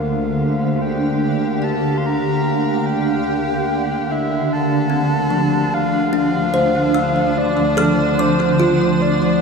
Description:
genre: ambient.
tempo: 73 BPM.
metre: 4/4.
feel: straight.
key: D minor.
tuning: A4 = 438 Hz.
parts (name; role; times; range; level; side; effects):
breathy flute-like synth lead; melody; 0.0-9.4 s; C5 to C6; -23 LUFS; equal; chorus, ping-pong delay.
granular cloud pad; sustained chords; 0.0-9.4 s; D3 to F5; -18 LUFS; right 1 dB; built-in reverb.
kalimba; arpeggios; 0.0-9.4 s; F3 to F6; -22 LUFS; left 2 dB; ping-pong delay.
warm studio cello section; bass; 0.0-9.4 s; D2; -25 LUFS; equal; none.
analog drone; drone; 0.0-9.4 s; D3 to Bb3; -28 LUFS; equal; chorus.
room: wet lush hall reverb, RT60 2.5 s.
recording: none.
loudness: -15 LUFS.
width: side -5 dB against mid.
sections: 0.0-9.4 A section.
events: fade-in on kalimba 0.0-9.4; fade-in on soft synth lead 0.0-9.4; fade-out on synth drone 0.0-9.4.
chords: 0.0 C7sus4/D (rootless); 4.1 Dm7.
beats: | 0.80 1.62 2.44 3.27 | 4.09 4.91 5.73 6.55 | 7.38 8.20 9.02.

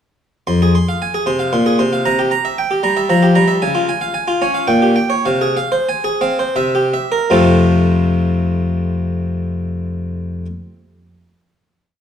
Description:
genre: classical, baroque-style suite movement for harpsichord.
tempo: 77-116 BPM.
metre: 3/4.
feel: rubato.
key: unclear.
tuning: A4 = 440 Hz.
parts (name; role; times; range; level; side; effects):
harpsichord; solo; 0.5-10.5 s; F2 to C6; -14 LUFS; equal; none.
room: wet recital hall reverb, RT60 1.6 s.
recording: dark, warm production.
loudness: -14 LUFS.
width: side -8 dB against mid.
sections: 0.5-7.3 A section; 7.3-11.8 final chord.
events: slowing down 2.8-7.3.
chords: 0.5 Fm; 2.1 C7; 3.6 Db; 4.7 Gdim/Bb; 5.3 Fm/C; 6.6 C7; 7.3 F.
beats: | 0.47 1.01 1.53 | 2.05 2.58 3.11 | 3.63 4.16 4.70 | 5.26 5.88 6.56 | 7.31 8.06 8.81 | 9.55 10.29.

